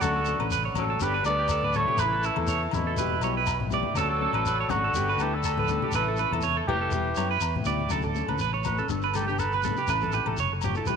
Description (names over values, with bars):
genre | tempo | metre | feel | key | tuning
highlife guitar band | 122 BPM | 4/4 | swing 53% on 16ths | D major | A4 = 439 Hz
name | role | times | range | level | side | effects
trumpet with cup mute | melody | 0.0-10.4 s | E4 to D5 | -30 LUFS | right 2 dB | none
raspy tenor saxophone | second line | 0.0-7.4 s | B2 to B3 | -35 LUFS | left 9 dB | none
nylon-string guitar | accompaniment | 0.0-11.0 s | F#3 to A4 | -36 LUFS | left 10 dB | none
mellow tonewheel organ | sustained chords | 0.0-7.9 s | D5 to C#6 | -39 LUFS | equal | slow rotary speaker
clean electric guitar | arpeggios | 0.0-11.0 s | E4 to D5 | -29 LUFS | right 10 dB | harmonic tremolo, tape echo
fingered electric bass | bass | 0.0-11.0 s | E1 to F#2 | -31 LUFS | equal | none
agogo bells | percussion | 0.0-10.8 s | none | -38 LUFS | left 12 dB | none
shekere | percussion | 0.0-11.0 s | none | -36 LUFS | left 4 dB | none
congas | percussion | 0.4-10.8 s | none | -35 LUFS | left 6 dB | none
room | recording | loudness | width
moderate echo chamber reverb, RT60 2.2 s | 1960s-style stereo with parts hard left and right | -24 LUFS | side -6 dB against mid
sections
0.0-7.9 A section; 7.9-11.0 B section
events
muted trumpet solo 7.9-11.0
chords
0.0 Dmaj7; 1.0 Gadd9; 2.0 A; 3.0 Em; 4.0 Dmaj7; 5.0 Gadd9; 5.9 A; 6.9 Em; 7.9 Dmaj7; 8.9 Gadd9; 9.9 A